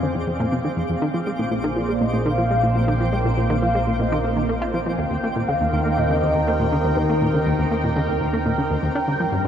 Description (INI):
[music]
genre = ambient, sequencer-driven space music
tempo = 121 BPM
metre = 4/4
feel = straight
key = unclear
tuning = A4 = 437 Hz
[part]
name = mellow horn-like synth lead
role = melody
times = 0.0-9.4 s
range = Bb4 to Ab5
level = -26 LUFS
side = equal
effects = phaser, ensemble chorus, shimmer reverb, analog delay
[part]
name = phased analog pad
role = sustained chords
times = 0.0-9.5 s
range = Bb2 to G5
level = -25 LUFS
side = right 1 dB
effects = phaser, chorus, shimmer reverb
[part]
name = plucky analog bass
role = riff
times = 0.0-9.5 s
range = Eb2 to F4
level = -23 LUFS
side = equal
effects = vintage 12-bit sampler grit, analog delay
[part]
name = analog drone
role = bass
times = 0.0-9.5 s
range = Bb1 to G2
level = -26 LUFS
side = equal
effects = chorus
[part]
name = twinkling granular texture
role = texture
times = 0.0-9.5 s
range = C4 to D6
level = -31 LUFS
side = right 1 dB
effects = built-in reverb, shimmer reverb
[sound]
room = wet huge ambient reverb, RT60 7.7 s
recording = dark, warm production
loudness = -19 LUFS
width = side -8 dB against mid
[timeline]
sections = 0.0-9.5 A section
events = none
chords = 0.0 Fm; 1.0 Bbsus2; 5.0 Eb; 9.0 Gm